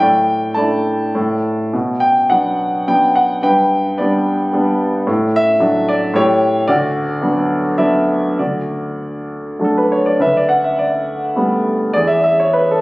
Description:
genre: classical, lyrical solo piano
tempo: 95-113 BPM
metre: 3/4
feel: rubato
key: D major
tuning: A4 = 440 Hz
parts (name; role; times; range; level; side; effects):
- warm grand piano; solo; 0.0-12.8 s; D2 to A5; -13 LUFS; equal; none
room: light reverb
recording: recorded on a phone in the room, studio reverb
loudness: -13 LUFS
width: side -21 dB against mid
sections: 0.0-8.4 A section; 8.4-12.8 B section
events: grand piano fill 7.5-8.4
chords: 0.0 Asus4; 1.7 Bm; 3.4 G; 5.1 D/A; 6.2 A7; 6.7 D6; 8.4 D; 10.2 Gadd9/D; 12.0 E7

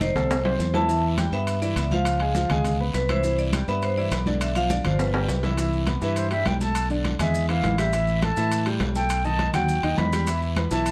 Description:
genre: Afro-Cuban jazz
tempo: 205 BPM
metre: 4/4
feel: straight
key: C major from 5.6 s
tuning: A4 = 442 Hz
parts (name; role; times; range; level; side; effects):
- vibraphone with medium hard mallets; melody; 0.0-5.4 s; B4 to A5; -30 LUFS; equal; none
- warm baby grand piano; accompaniment; 0.0-10.9 s; D3 to C6; -31 LUFS; equal; none
- fingered electric bass; bass; 0.0-10.9 s; F1 to A2; -28 LUFS; equal; none
- congas; percussion; 0.0-10.9 s; none; -33 LUFS; equal; none
- guiro; percussion; 0.0-10.9 s; none; -42 LUFS; equal; none
- maracas; percussion; 0.0-10.9 s; none; -44 LUFS; equal; none
- timbales; percussion; 0.2-10.9 s; none; -34 LUFS; equal; none
- concert flute; second line; 6.0-10.9 s; B4 to B5; -29 LUFS; equal; none
room: moderate club reverb, RT60 0.8 s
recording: none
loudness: -24 LUFS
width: mono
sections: 0.0-5.6 A section; 5.6-10.9 B section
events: drum fill 0.2-0.9, 5.0-5.6; flute solo 5.6-10.9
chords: 0.0 F7 (rootless); 0.9 Em; 2.1 C#7; 3.2 Cmaj9; 4.4 Bdim; 5.0 G7; 5.6 Cmaj7; 6.8 Bm7; 7.3 E; 7.9 Asus2; 9.1 B7b13; 10.3 E5

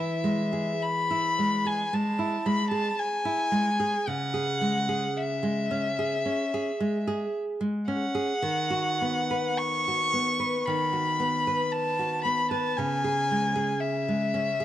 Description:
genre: romantic duo for violin and classical guitar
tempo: 48-59 BPM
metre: 4/4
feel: rubato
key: E major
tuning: A4 = 441 Hz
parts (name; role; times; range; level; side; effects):
- dark violin; melody; 0.0-14.6 s; E5 to C#6; -27 LUFS; left 2 dB; none
- nylon-string guitar; accompaniment; 0.0-14.6 s; C#3 to B4; -28 LUFS; right 1 dB; none
room: moderate spring reverb, RT60 2.1 s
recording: none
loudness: -25 LUFS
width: side -12 dB against mid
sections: 0.0-14.6 A section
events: none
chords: 0.0 E; 4.1 C#m; 8.4 B/D#; 12.8 C#m

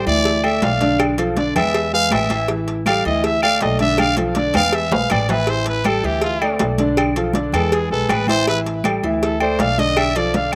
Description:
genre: latin, salsa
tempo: 161 BPM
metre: 4/4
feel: straight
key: unclear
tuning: A4 = 438 Hz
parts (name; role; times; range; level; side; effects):
- growling trumpet; melody; 0.0-10.5 s; F4 to F5; -22 LUFS; equal; none
- warm concert grand piano; accompaniment; 0.0-10.6 s; D3 to E5; -23 LUFS; equal; none
- upright bass; bass; 0.1-10.6 s; A1 to E2; -26 LUFS; equal; none
- agogo bells and timbales; percussion; 0.1-10.6 s; none; -26 LUFS; equal; none
- congas; percussion; 0.1-10.5 s; none; -28 LUFS; equal; none
- cowbell; percussion; 0.3-10.6 s; none; -28 LUFS; equal; none
- claves; percussion; 0.4-10.6 s; none; -33 LUFS; equal; none
room: little or no reverb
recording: recorded outdoors, with no room sound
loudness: -18 LUFS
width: mono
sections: 0.0-10.6 A section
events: trumpet solo 0.0-10.6; drum fill 4.0-5.5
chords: 0.3 Dmadd9; 1.0 Bm7b5; 1.7 E; 2.5 A5; 3.2 Dsus2; 4.0 Bm7b5; 4.7 E; 5.5 A5; 6.2 Dmadd9; 7.0 Bm7b5; 7.7 E; 8.5 A5; 9.2 Dsus2; 10.0 Bm7b5

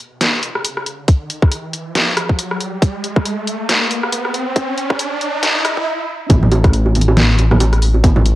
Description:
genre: deep dubstep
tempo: 138 BPM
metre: 4/4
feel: swing 57% on 16ths, half-time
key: unclear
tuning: A4 = 440 Hz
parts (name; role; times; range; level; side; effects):
- riser; sound effects; 1.2-5.9 s; none; -22 LUFS; right 1 dB; none
- dubstep drum kit; drums; 0.2-8.4 s; hi-hat, rim click, snare drum; -18 LUFS; equal; high-pass filter on hats, high-pass filter on snare, high-pass filter on room
- electronic kick drum; drums; 1.1-8.1 s; none; -12 LUFS; equal; none
- dark detuned saw bass; bass; 6.3-8.4 s; A1; -13 LUFS; equal; transformer saturation
- bongos and congas; percussion; 6.3-8.2 s; none; -16 LUFS; right 2 dB; dub echo
room: light reverb, digital ambience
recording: dry, gritty hardware recording, transformer saturation, cassette tape, high-pass filter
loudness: -14 LUFS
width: side -16 dB against mid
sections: 0.0-6.3 A section; 6.3-8.4 B section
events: build-up 0.0-6.3; riser 1.2-5.9; stop 5.9-6.3; drop 6.3-8.4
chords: none

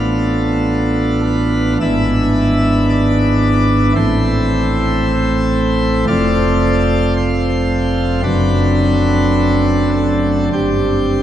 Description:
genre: classical, chorale-style piece for pipe organ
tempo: 50-57 BPM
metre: 4/4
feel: rubato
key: A minor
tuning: A4 = 440 Hz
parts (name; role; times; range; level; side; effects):
- pipe organ, plenum; solo; 0.0-11.2 s; F1 to E5; -12 LUFS; equal; none
room: wet cathedral reverb, RT60 4.7 s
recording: vinyl crackle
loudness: -12 LUFS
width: side -11 dB against mid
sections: 0.0-11.2 A section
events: none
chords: 0.0 Bm7b5/A; 1.8 E7/G#; 4.0 Am; 6.1 F; 8.3 D7/F#; 10.5 Gsus4

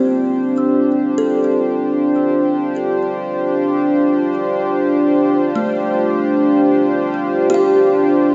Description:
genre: ambient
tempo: free time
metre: none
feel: none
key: unclear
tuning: A4 = 436 Hz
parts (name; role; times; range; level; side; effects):
- warm analog pad; sustained chords; 0.0-8.3 s; D4 to C5; -17 LUFS; equal; chorus
- kalimba; arpeggios; 0.0-8.3 s; A3 to E6; -22 LUFS; equal; delay
room: wet lush hall reverb, RT60 2.9 s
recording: nothing above 7.8 kHz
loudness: -16 LUFS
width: mono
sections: 0.0-8.3 A section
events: none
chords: 0.1 Dm7

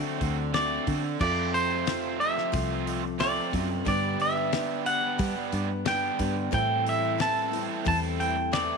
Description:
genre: folk rock and heartland rock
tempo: 90 BPM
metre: 4/4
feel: straight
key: G major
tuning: A4 = 440 Hz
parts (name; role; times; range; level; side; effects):
- twangy electric guitar; melody; 0.0-8.8 s; C5 to A5; -28 LUFS; right 1 dB; none
- picked steel-string acoustic guitar; accompaniment; 0.0-8.8 s; G2 to B4; -33 LUFS; left 13 dB; none
- warm grand piano; accompaniment; 0.0-8.8 s; G3 to G5; -40 LUFS; right 13 dB; none
- raw garage guitar; riff; 0.0-8.8 s; F2 to G4; -33 LUFS; right 16 dB; overdrive
- fingered electric bass; bass; 0.0-8.7 s; C2 to G3; -32 LUFS; equal; none
- damped 70s drum kit; drums; 0.2-8.7 s; crash cymbal, hi-hat, kick drum, snare drum; -34 LUFS; left 4 dB; none
room: light reverb, studio reverb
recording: 1960s-style stereo with parts hard left and right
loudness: -25 LUFS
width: side -4 dB against mid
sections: 0.0-8.8 A section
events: none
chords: 0.0 D7; 1.2 Fmaj7; 3.9 Gmaj7; 6.5 Am7

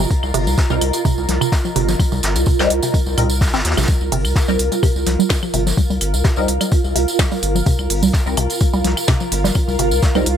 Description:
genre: minimal techno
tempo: 127 BPM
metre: 4/4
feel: swing 53% on 16ths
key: C minor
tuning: A4 = 440 Hz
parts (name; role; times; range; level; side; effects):
- hollow square pluck; riff; 0.0-10.2 s; Bb2 to C4; -22 LUFS; right 3 dB; chorus, phaser, sidechain pumping, ping-pong delay
- round analog bass; bass; 0.0-10.4 s; G1 to Eb2; -20 LUFS; equal; sidechain pumping
- congas and claves; percussion; 0.0-10.2 s; none; -25 LUFS; left 7 dB; dub echo
- tambourine; percussion; 0.0-10.2 s; none; -28 LUFS; right 3 dB; none
- granular cloud pad; texture; 0.0-10.4 s; F4 to Bb5; -22 LUFS; right 2 dB; built-in reverb, sidechain pumping
- electronic kick drum; drums; 0.1-10.1 s; none; -16 LUFS; equal; none
- vintage brush drum kit; drums; 0.1-10.4 s; hi-hat, snare drum; -28 LUFS; equal; high-pass filter on hats, high-pass filter on snare, high-pass filter on room
- minimal click drum kit; drums; 0.3-10.4 s; hi-hat, snare drum; -22 LUFS; right 1 dB; none
- filtered dub chord stab; stabs; 0.7-10.3 s; G3 to Bb4; -22 LUFS; left 3 dB; phaser, ensemble chorus, dub echo
room: moderate studio reverb, RT60 0.6 s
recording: none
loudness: -15 LUFS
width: side -9 dB against mid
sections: 0.0-10.4 A section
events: none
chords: 0.0 Cm7

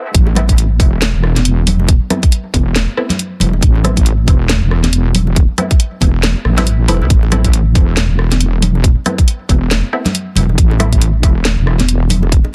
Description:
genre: deep dubstep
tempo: 138 BPM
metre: 4/4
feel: swing 59% on 16ths, half-time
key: A minor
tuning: A4 = 440 Hz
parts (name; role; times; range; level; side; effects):
- filtered dub chord stab; stabs; 0.0-10.9 s; A3 to E4; -25 LUFS; equal; phaser, subtle chorus, cassette tape, dub echo
- wobble bass; bass; 0.1-12.4 s; E1 to C2; -15 LUFS; equal; chorus
- electronic kick drum; drums; 0.1-12.4 s; none; -13 LUFS; equal; high-pass filter on kick, high-pass filter on room
- garage drum kit; drums; 0.1-12.4 s; hi-hat, rim click, snare drum; -20 LUFS; equal; high-pass filter on hats, high-pass filter on snare, high-pass filter on room
- bongos and congas; percussion; 0.3-12.5 s; none; -23 LUFS; equal; dub echo
room: little or no reverb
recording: dense, heavily limited modern master, high-pass filter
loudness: -13 LUFS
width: mono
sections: 0.1-12.5 A section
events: drop 0.1-12.5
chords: 0.1 A5

